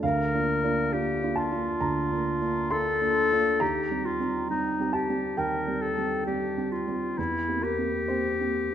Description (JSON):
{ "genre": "classical, romantic duo for clarinet and grand piano", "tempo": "67 BPM", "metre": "4/4", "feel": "rubato", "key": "unclear", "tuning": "A4 = 436 Hz", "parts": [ { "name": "bright clarinet", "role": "melody", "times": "0.0-8.7 s", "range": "Eb4 to Bb4", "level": "-27 LUFS", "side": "left 3 dB", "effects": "none" }, { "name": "dark baby grand piano", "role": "accompaniment", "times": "0.0-8.7 s", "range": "D2 to C6", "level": "-28 LUFS", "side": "right 3 dB", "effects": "none" } ], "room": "wet recital hall reverb, RT60 1.4 s", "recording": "none", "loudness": "-24 LUFS", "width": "side -10 dB against mid", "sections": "0.0-8.7 A section", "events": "none", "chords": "0.0 Bb/D; 3.6 Cm7/Eb; 7.2 C7/E", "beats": "| 0.03 0.93 1.81 2.71 | 3.61 4.50 5.38 6.27 | 7.18 8.09" }